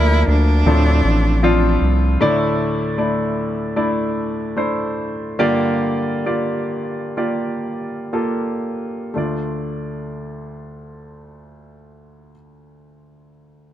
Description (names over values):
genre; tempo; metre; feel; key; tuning
pop ballad; 56-78 BPM; 4/4; straight; D minor; A4 = 440 Hz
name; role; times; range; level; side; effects
clear cello; melody; 0.0-1.8 s; D4 to E4; -22 LUFS; equal; digital delay
clear baby grand piano; accompaniment; 0.0-13.7 s; D2 to D5; -19 LUFS; equal; none
round analog bass; bass; 0.0-2.2 s; A1 to D2; -15 LUFS; equal; none
room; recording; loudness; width
light reverb, small room reverb; dark, warm production; -17 LUFS; side -12 dB against mid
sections
0.0-2.2 A section; 2.2-9.2 B section; 9.2-13.4 C section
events
slowing down 2.2-9.2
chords
0.0 Bbmaj7/D; 0.7 Dm7; 2.2 Dsus2; 5.4 Gm7; 9.2 Dm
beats
0.67 1.44 | 2.21 2.98 3.76 4.57 | 5.40 6.26 7.17 8.13 | 9.16 10.22 11.29 12.35